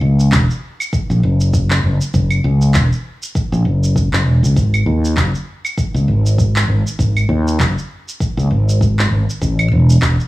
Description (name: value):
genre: sunset chillout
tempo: 99 BPM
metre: 4/4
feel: swing 58% on 16ths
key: unclear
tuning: A4 = 440 Hz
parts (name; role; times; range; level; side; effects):
- fretless electric bass; bass; 0.0-10.2 s; E1 to D#2; -13 LUFS; equal; none
- electronic shaker, handclaps and claves; drums; 0.2-10.3 s; none; -22 LUFS; equal; none
- electronic kick drum; drums; 0.3-10.2 s; none; -19 LUFS; equal; none
room: little or no reverb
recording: dry, gritty hardware recording, small room ambience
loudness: -13 LUFS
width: side -18 dB against mid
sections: 0.0-10.3 A section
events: none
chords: none